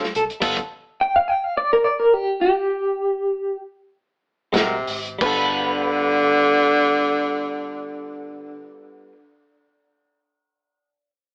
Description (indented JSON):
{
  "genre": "straight-eighth soul blues",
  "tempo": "87-109 BPM",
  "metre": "4/4",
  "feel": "swing 55% on 16ths",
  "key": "G mixolydian",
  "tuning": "A4 = 439 Hz",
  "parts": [
    { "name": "direct-recorded clean electric guitar", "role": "stabs", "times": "0.0-0.6, 4.5-9.2 s", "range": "G3 to Bb4", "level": "-30 LUFS", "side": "equal", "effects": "none" },
    { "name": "warm soul drum kit", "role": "drums", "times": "0.0-0.7, 4.5-5.4 s", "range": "crash cymbal, hi-hat, kick drum, snare drum", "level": "-27 LUFS", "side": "equal", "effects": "none" },
    { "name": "electric guitar through a small old amp", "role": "melody", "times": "0.2-9.1 s", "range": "G4 to G5", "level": "-22 LUFS", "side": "equal", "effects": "tremolo" },
    { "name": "vintage muted fingered electric bass", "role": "bass", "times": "0.2-0.5, 4.5-9.1 s", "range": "G1 to C2", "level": "-46 LUFS", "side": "equal", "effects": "none" },
    { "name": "bright tenor saxophone", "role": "second line", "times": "4.6-8.7 s", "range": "C3 to D3", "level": "-22 LUFS", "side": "equal", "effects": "analog delay" }
  ],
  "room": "moderate studio reverb, RT60 0.7 s",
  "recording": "band playing live in one room, AM radio sound",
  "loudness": "-20 LUFS",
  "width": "mono",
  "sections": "0.0-5.2 A section; 5.2-8.0 B section",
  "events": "slowing down 0.4-5.2",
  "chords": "0.4 G9; 4.5 Ab9; 5.2 G9",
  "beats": "| 0.42 0.97 1.53 2.10 | 2.68 3.28 3.90 4.54 | 5.21 5.90 6.59 7.28"
}